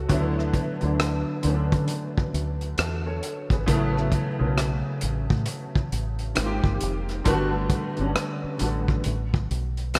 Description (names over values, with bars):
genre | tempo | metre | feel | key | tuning
R&B, neo-soul | 67 BPM | 4/4 | swing 62% on 16ths | unclear | A4 = 440 Hz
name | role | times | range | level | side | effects
warm grand piano | accompaniment | 0.0-9.1 s | C#3 to C#5 | -29 LUFS | equal | ensemble chorus
deep dub fingered electric bass | bass | 0.0-10.0 s | F1 to D3 | -30 LUFS | equal | none
crunchy breakbeat drum kit | drums | 0.1-10.0 s | hi-hat, kick drum, rim click | -29 LUFS | equal | none
room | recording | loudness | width
moderate church reverb, RT60 3.4 s | dreamy mix soaked in reverb | -25 LUFS | mono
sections
0.0-10.0 A section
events
none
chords
0.1 D69; 3.7 A69; 6.4 G#maj9; 7.3 Gmaj9; 9.1 Asus2